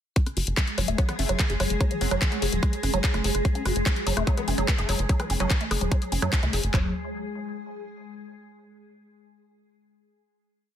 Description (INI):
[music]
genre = psychedelic trance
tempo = 146 BPM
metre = 4/4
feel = straight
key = F# minor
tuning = A4 = 441 Hz
[part]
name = evolving wavetable pad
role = sustained chords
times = 0.5-6.7 s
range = G#3 to G#4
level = -32 LUFS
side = equal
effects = ensemble chorus, built-in reverb, phaser, sidechain pumping
[part]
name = woody wave-folded pluck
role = riff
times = 0.2-6.9 s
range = E3 to G#4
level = -30 LUFS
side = moving between left 4 dB and right 4 dB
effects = chorus, auto-pan, sidechain pumping, tape echo
[part]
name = garage drum kit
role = drums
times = 0.2-6.8 s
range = handclaps, kick drum, toms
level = -24 LUFS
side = equal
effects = none
[part]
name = garage drum kit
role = drums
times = 0.2-6.7 s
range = handclaps, hi-hat, rim click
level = -29 LUFS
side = left 2 dB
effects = none
[part]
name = tight sequencer bass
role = bass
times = 0.4-6.9 s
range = E1 to F#2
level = -27 LUFS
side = equal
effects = none
[part]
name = metallic wobble bass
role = second line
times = 1.0-6.4 s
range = F#3 to C#4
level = -39 LUFS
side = left 4 dB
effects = wide subtle chorus, sidechain pumping, high-pass filter, ping-pong delay
[sound]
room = light reverb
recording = dense, heavily limited modern master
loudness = -23 LUFS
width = side -10 dB against mid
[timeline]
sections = 0.2-6.7 groove; 6.7-8.4 final note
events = filter sweep on synth arpeggio sound 0.2-6.7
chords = 0.2 F#5; 6.7 N.C.